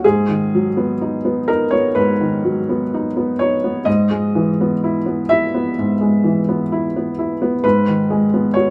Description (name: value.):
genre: neoclassical minimalist piano.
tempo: 63 BPM.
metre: 4/4.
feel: rubato.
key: G# minor.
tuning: A4 = 440 Hz.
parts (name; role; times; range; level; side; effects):
felt-muted upright piano; solo; 0.0-8.7 s; G#2 to E5; -18 LUFS; equal; none.
room: light reverb.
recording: band playing live in one room, nothing above 10.7 kHz.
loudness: -18 LUFS.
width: mono.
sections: 0.0-8.7 A section.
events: none.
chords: 0.0 G#m7; 3.9 E/G#; 7.6 G#m7.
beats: | 0.03 1.01 1.97 2.92 | 3.86 4.82 5.77 6.71 | 7.64 8.56.